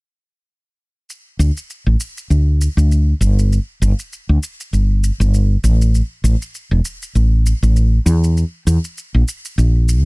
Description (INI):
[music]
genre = organic downtempo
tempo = 99 BPM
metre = 4/4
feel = swing 57% on 16ths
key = unclear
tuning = A4 = 440 Hz
[part]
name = shaker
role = drums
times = 1.1-10.0 s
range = none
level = -31 LUFS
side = right 1 dB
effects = studio reverb
[part]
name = woody fretless electric bass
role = bass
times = 1.4-10.0 s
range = E1 to E2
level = -12 LUFS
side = equal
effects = none
[sound]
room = little or no reverb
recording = dark, warm production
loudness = -14 LUFS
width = side -32 dB against mid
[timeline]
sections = 1.1-10.1 A section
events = none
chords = none